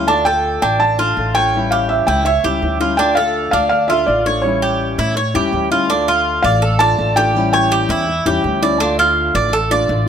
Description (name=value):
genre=latin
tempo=165 BPM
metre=4/4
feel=straight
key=D harmonic minor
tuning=A4 = 440 Hz
part: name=nylon-string guitar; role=accompaniment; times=0.0-10.1 s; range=D3 to F4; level=-22 LUFS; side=left 5 dB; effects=none
part: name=Cuban tres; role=arpeggios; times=0.0-10.1 s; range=D4 to D5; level=-17 LUFS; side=right 2 dB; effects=none
part: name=upright bass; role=bass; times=0.0-10.1 s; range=A1 to A2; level=-22 LUFS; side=left 1 dB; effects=none
part: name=felt-muted upright piano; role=melody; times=0.1-8.0 s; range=C#5 to A5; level=-17 LUFS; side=right 1 dB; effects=none
room=light reverb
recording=none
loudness=-13 LUFS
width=side -8 dB against mid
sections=0.0-5.9 A section; 5.9-10.1 B section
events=none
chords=0.1 Dm; 1.5 A7; 3.0 Dm; 4.4 A7; 5.9 Dm; 7.3 A7; 8.8 Dm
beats=| 0.08 0.45 0.81 1.17 | 1.54 1.90 2.26 2.63 | 2.99 3.35 3.72 4.08 | 4.45 4.81 5.17 5.54 | 5.90 6.26 6.62 6.99 | 7.35 7.71 8.08 8.44 | 8.80 9.16 9.53 9.89